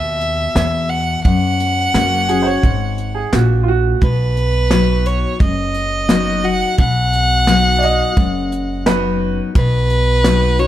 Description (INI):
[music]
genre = honky-tonk and classic country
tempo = 87 BPM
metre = 4/4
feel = straight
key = B major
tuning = A4 = 439 Hz
[part]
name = bright fiddle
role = melody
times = 0.0-10.7 s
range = B4 to F#5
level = -18 LUFS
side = right 1 dB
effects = slapback echo
[part]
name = picked steel-string acoustic guitar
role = accompaniment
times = 0.0-10.7 s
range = E2 to F#4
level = -20 LUFS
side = left 5 dB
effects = none
[part]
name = upright bass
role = bass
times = 0.0-10.7 s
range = F#1 to F#2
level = -18 LUFS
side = equal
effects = none
[part]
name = soft brush drum kit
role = drums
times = 0.2-10.7 s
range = hi-hat, kick drum, snare drum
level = -17 LUFS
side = equal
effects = none
[part]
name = bright upright piano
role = second line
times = 2.3-9.4 s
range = E#4 to D#5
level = -20 LUFS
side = right 6 dB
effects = none
[sound]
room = little or no reverb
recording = dark, warm production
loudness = -13 LUFS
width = side -12 dB against mid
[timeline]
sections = 0.0-10.7 A section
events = none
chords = 0.0 E5; 1.2 F#; 4.0 B